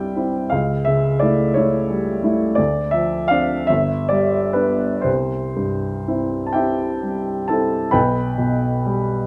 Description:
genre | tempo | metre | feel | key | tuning
classical, romantic nocturne for solo piano | 38-60 BPM (dotted quarters) | 12/8 | rubato | C major | A4 = 441 Hz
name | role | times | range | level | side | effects
warm upright piano | solo | 0.0-9.3 s | G1 to B5 | -20 LUFS | equal | none
room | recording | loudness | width
moderate recital hall reverb, RT60 1.5 s | close, detailed microphones | -20 LUFS | mono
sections
0.0-7.9 A section; 7.9-9.3 B section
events
none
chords
0.0 C; 0.5 A7/C#; 2.6 Dm7; 3.7 G; 5.1 C; 7.9 G/B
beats
0.52 1.57 | 2.59 3.71 5.05 6.56 | 7.95

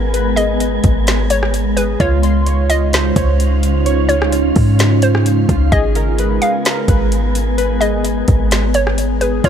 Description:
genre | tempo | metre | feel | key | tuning
hip hop, atmospheric cloud-rap | 129 BPM | 4/4 | half-time | unclear | A4 = 440 Hz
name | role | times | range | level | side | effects
ethereal airy pad | sustained chords | 0.0-9.5 s | Db3 to F4 | -19 LUFS | right 1 dB | ensemble chorus, built-in reverb, sidechain pumping
warbly lo-fi synth keys | arpeggios | 0.0-9.5 s | F4 to C6 | -22 LUFS | equal | chorus, ping-pong delay
clean 808-style bass | bass | 0.0-9.5 s | Ab1 to Ab2 | -16 LUFS | equal | none
wind-like tuned noise texture | texture | 0.0-9.5 s | Cb4 to C6 | -27 LUFS | left 1 dB | built-in reverb
smooth R&B drum kit | drums | 0.1-9.5 s | hi-hat, kick drum, rim click, snare drum | -18 LUFS | equal | overdrive
hollow square pluck | melody | 0.4-9.5 s | Cb5 to F5 | -21 LUFS | equal | chorus, ping-pong delay
room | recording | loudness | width
light reverb, digital ambience | none | -12 LUFS | side -8 dB against mid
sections
0.0-9.5 A section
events
none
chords
0.0 Abmadd9; 2.0 Dbmaj7; 5.7 Abmadd9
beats
| 0.14 0.60 1.07 1.53 | 2.00 2.47 2.93 3.40 | 3.86 4.33 4.79 5.26 | 5.72 6.19 6.65 7.12 | 7.58 8.05 8.51 8.98 | 9.44

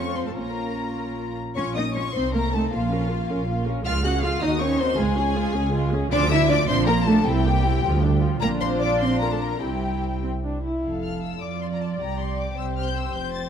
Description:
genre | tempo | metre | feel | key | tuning
quick classical-period movement for string orchestra | 97-108 BPM (dotted quarters) | 6/8 | rubato | Bb minor | A4 = 439 Hz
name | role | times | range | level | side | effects
dark studio violin section | melody | 0.0-13.5 s | F5 to A6 | -30 LUFS | left 5 dB | none
warm studio violin section | second line | 0.0-13.5 s | F4 to Gb5 | -29 LUFS | left 5 dB | none
rich studio viola section | accompaniment | 0.0-13.5 s | F3 to D5 | -28 LUFS | right 1 dB | none
dark studio double bass section | bass | 0.0-13.5 s | F1 to F2 | -26 LUFS | right 2 dB | none
warm studio cello section | bass | 0.0-13.5 s | C2 to Gb4 | -28 LUFS | right 2 dB | none
room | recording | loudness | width
moderate scoring stage reverb, RT60 1.9 s | dark, warm production | -21 LUFS | side -8 dB against mid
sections
0.0-1.6 A section; 1.6-10.8 A section; 10.8-13.5 B section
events
none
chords
0.4 Bbm; 2.2 Adim/C; 2.7 Bbm; 3.9 Db; 4.4 Cdim/Eb; 5.0 Db; 6.1 Dm; 6.7 Bb; 7.3 C7; 7.8 Dm; 8.4 Bb; 9.6 C; 10.8 F; 12.0 C5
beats
| 0.36 0.97 | 1.57 2.15 | 2.72 3.29 | 3.86 4.42 | 4.99 5.56 | 6.12 6.69 | 7.26 7.83 | 8.41 9.01 | 9.62 10.23 | 10.85 11.43 | 12.01 12.58 | 13.15

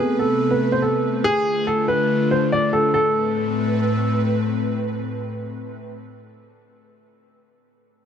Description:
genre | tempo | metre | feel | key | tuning
hip hop | 142 BPM | 4/4 | half-time | A harmonic minor | A4 = 436 Hz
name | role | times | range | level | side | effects
dark baby grand piano | melody | 0.0-4.2 s | G#4 to D5 | -21 LUFS | equal | digital delay
mellow tine electric piano | accompaniment | 0.0-1.3 s | B3 to A4 | -23 LUFS | right 3 dB | wide subtle chorus
airy breathy pad | sustained chords | 0.0-5.9 s | A2 to B4 | -22 LUFS | left 1 dB | chorus
room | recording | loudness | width
light reverb | dark, warm production | -18 LUFS | side -8 dB against mid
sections
0.0-2.9 A section; 2.9-6.3 B section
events
none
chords
0.0 Amadd9; 1.2 Dm; 2.9 Amadd9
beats
0.40 0.83 | 1.25 1.67 2.09 2.52 | 2.94 3.36 3.78 4.21 | 4.63 5.05 5.47 5.90

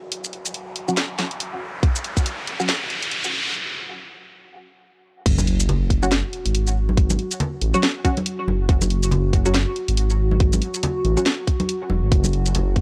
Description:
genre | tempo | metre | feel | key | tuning
deep dubstep | 140 BPM | 4/4 | swing 58% on 16ths, half-time | unclear | A4 = 440 Hz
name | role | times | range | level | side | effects
dark analog pad | sustained chords | 0.0-12.8 s | F#4 | -33 LUFS | equal | chorus, phaser
riser and sub drop | sound effects | 0.2-7.0 s | none | -31 LUFS | equal | none
garage drum kit | drums | 0.1-12.8 s | crash cymbal, hi-hat, shaker, snare drum | -27 LUFS | equal | high-pass filter on hats, high-pass filter on perc, high-pass filter on snare, high-pass filter on cymbals
filtered dub chord stab | stabs | 0.9-2.7, 6.0-11.3 s | F#3 to F#4 | -29 LUFS | equal | phaser, subtle chorus, dub echo
electronic kick drum | drums | 1.8-2.2, 5.3-12.8 s | none | -21 LUFS | equal | none
dark detuned saw bass | bass | 5.3-12.8 s | E1 to A1 | -23 LUFS | equal | none
congas | percussion | 5.4-12.6 s | none | -29 LUFS | equal | dub echo
room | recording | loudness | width
little or no reverb | dry, gritty hardware recording, cassette tape | -21 LUFS | mono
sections
0.0-5.3 A section; 5.3-12.8 B section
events
build-up 0.0-5.3; filter sweep on synth stab 0.0-5.3; riser 0.2-3.5; break 3.5-5.3; drop 5.3-12.8; impact 5.3-7.0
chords
0.0 F#5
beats
| 0.12 0.55 0.97 1.40 | 1.83 2.26 2.69 3.12 | 3.55 3.97 4.40 4.83 | 5.26 5.69 6.12 6.55 | 6.97 7.40 7.83 8.26 | 8.69 9.12 9.55 9.97 | 10.40 10.83 11.26 11.69 | 12.12 12.55

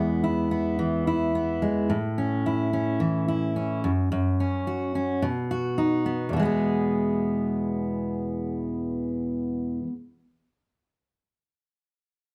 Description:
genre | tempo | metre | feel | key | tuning
pop | 108 BPM | 4/4 | straight | E major | A4 = 440 Hz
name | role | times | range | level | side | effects
fingerpicked steel-string acoustic guitar | solo | 0.0-10.0 s | E2 to G#4 | -26 LUFS | equal | none
room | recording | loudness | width
moderate studio reverb, RT60 0.9 s | none | -26 LUFS | mono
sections
0.0-6.3 A section; 6.3-8.6 B section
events
none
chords
0.0 E; 1.9 A; 3.8 F#5; 5.2 B; 6.3 E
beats
0.24 0.79 1.35 | 1.90 2.46 3.02 3.57 | 4.13 4.68 5.24 5.79 | 6.35 6.90 7.46 8.02

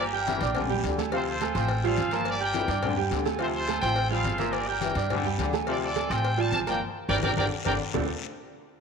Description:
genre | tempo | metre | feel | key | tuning
latin, salsa | 211 BPM | 4/4 | straight | D minor | A4 = 439 Hz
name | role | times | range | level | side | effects
bright trumpet section | melody | 0.0-7.7 s | F4 to A5 | -30 LUFS | left 1 dB | none
bright trombone section | second line | 0.0-8.1 s | C3 to G3 | -34 LUFS | left 10 dB | slapback echo
bright upright piano | accompaniment | 0.0-8.1 s | D3 to G6 | -30 LUFS | right 10 dB | none
upright bass | bass | 0.0-8.1 s | G1 to G2 | -32 LUFS | left 1 dB | none
congas | percussion | 0.0-8.0 s | none | -36 LUFS | left 10 dB | none
agogo bells and timbales | percussion | 0.3-8.0 s | none | -37 LUFS | right 9 dB | none
cowbell and bongos | percussion | 0.3-8.0 s | none | -38 LUFS | left 12 dB | none
guiro | percussion | 0.3-8.0 s | none | -41 LUFS | left 12 dB | none
room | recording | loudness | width
moderate echo chamber reverb, RT60 1.9 s, small room ambience | 1960s-style stereo with parts hard left and right | -24 LUFS | side -6 dB against mid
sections
0.0-8.0 A section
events
drum fill 6.8-8.0; band accent 6.8-8.0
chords
0.0 Gm; 1.1 Dm7; 2.3 Gm; 3.4 Dm7; 4.5 Gm; 5.7 Dm7; 6.8 Gm; 8.0 Dm7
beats
0.27 0.56 0.84 | 1.13 1.41 1.70 1.98 | 2.27 2.55 2.83 3.12 | 3.40 3.69 3.97 4.26 | 4.54 4.83 5.11 5.39 | 5.68 5.96 6.25 6.53 | 6.82 7.10 7.38 7.67 | 7.95

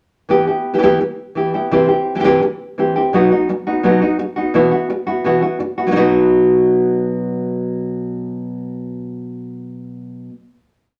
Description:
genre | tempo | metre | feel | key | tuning
flamenco | 170 BPM | 4/4 | straight | unclear | A4 = 439 Hz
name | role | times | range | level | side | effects
nylon-string guitar | solo | 0.3-10.3 s | B2 to G4 | -17 LUFS | equal | none
room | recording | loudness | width
wet studio reverb, RT60 0.7 s | none | -16 LUFS | mono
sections
0.3-6.0 groove; 6.0-8.8 final chord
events
none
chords
0.3 Em; 1.7 C; 3.1 B; 4.5 Bsus4; 6.0 B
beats
| 0.29 0.65 1.00 1.36 | 1.71 2.07 2.42 2.78 | 3.13 3.48 3.84 4.19 | 4.54 4.90 5.25 5.60 | 5.96 6.31 6.66 7.02 | 7.37 7.72 8.08 8.43

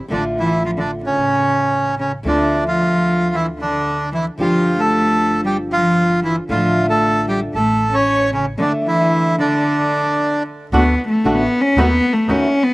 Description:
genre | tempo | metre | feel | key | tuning
tango | 113 BPM | 4/4 | rubato | D minor | A4 = 440 Hz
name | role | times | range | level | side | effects
flamenco guitar | accompaniment | 0.0-12.5 s | D3 to G4 | -22 LUFS | equal | slapback echo
bandoneon | melody | 0.1-10.4 s | C#4 to C#5 | -18 LUFS | right 1 dB | slapback echo
rich cello | second line | 0.1-12.7 s | C#3 to C#4 | -18 LUFS | left 1 dB | none
upright bass | bass | 0.1-12.5 s | G1 to D#2 | -25 LUFS | equal | none
bandoneon | stabs | 10.7-12.5 s | A3 to F#4 | -23 LUFS | right 2 dB | slapback echo
room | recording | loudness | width
light reverb | recorded outdoors, with no room sound, vinyl crackle, lossy compression artefacts | -14 LUFS | side -21 dB against mid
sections
0.0-10.7 A section; 10.7-12.7 B section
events
cello solo 10.7-12.7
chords
0.1 Dm/A; 1.2 A; 2.2 Dm7; 4.4 G5; 6.5 Dm/A; 7.5 A; 8.6 D5; 10.7 D; 11.8 B7/D#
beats
| 0.10 0.64 1.17 1.71 | 2.25 2.79 3.33 3.86 | 4.38 4.91 5.44 5.97 | 6.49 7.01 7.54 8.06 | 8.59 9.12 9.65 10.19 | 10.73 11.25 11.77 12.28

